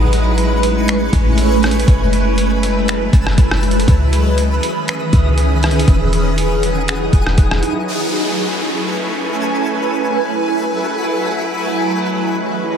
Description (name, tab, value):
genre	hip hop, atmospheric cloud-rap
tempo	120 BPM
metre	4/4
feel	half-time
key	A lydian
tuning	A4 = 440 Hz
part	granular cloud pad	sustained chords	0.0-12.8 s	D#3 to G#5	-17 LUFS	right 1 dB	built-in reverb, phaser, sidechain pumping
part	clean 808-style bass	bass	0.0-7.6 s	E1 to C#2	-16 LUFS	equal	none
part	twinkling granular texture	texture	0.0-12.8 s	E4 to E6	-24 LUFS	equal	built-in reverb
part	trip hop sampler-style drum kit	drums	0.1-7.7 s	finger snaps, hi-hat, kick drum, rim click	-17 LUFS	equal	none
part	downlifter	sound effects	7.9-11.9 s	none	-25 LUFS	equal	none
room	little or no reverb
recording	none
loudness	-13 LUFS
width	side -8 dB against mid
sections	0.0-7.9 A section; 7.9-12.8 B section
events	none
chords	0.0 Amaj9; 1.9 F#m11; 3.9 C#m9; 5.9 Emaj9; 7.9 Amaj9; 9.9 F#m11; 11.9 C#m9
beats	0.38 0.88 1.38 | 1.88 2.38 2.88 3.38 | 3.88 4.38 4.88 5.38 | 5.88 6.38 6.88 7.38 | 7.88 8.38 8.88 9.38 | 9.88 10.38 10.88 11.38 | 11.88 12.38